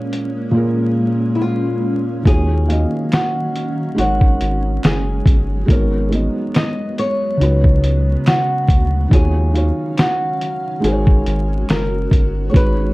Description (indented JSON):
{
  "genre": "lo-fi hip hop",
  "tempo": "70 BPM",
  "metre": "4/4",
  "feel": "swing 57% on 16ths",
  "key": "Eb minor",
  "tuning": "A4 = 440 Hz",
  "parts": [
    { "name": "flamenco guitar", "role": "melody", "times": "0.0-12.9 s", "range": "Fb4 to Eb5", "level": "-22 LUFS", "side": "left 1 dB", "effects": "analog delay, plate reverb" },
    { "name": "felt-muted upright piano", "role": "accompaniment", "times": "0.0-12.9 s", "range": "Bb2 to F5", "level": "-20 LUFS", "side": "right 1 dB", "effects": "cassette tape" },
    { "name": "granular cloud pad", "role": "sustained chords", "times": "0.0-12.9 s", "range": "Db3 to F5", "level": "-27 LUFS", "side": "equal", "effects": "built-in reverb, plate reverb" },
    { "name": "lo-fi sampler-style drum kit", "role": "drums", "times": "0.1-12.8 s", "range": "hi-hat, kick drum, snare drum", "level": "-14 LUFS", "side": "equal", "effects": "none" },
    { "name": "round analog bass", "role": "bass", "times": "2.3-12.9 s", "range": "Gb1 to Eb2", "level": "-18 LUFS", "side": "equal", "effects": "none" },
    { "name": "finger snaps", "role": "percussion", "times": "3.1-11.9 s", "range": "none", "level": "-35 LUFS", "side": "right 2 dB", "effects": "none" }
  ],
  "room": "light reverb",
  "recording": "dark, warm production, vinyl crackle",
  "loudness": "-14 LUFS",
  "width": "side -20 dB against mid",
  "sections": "0.0-2.3 A section; 2.3-12.9 B section",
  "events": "drums muted 0.5-2.3",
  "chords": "0.0 Bbm7; 2.3 Ebm9; 4.0 Ab7sus4; 5.7 Abm11; 7.4 Db7sus4; 9.1 Ebm9; 10.8 Ab7sus4"
}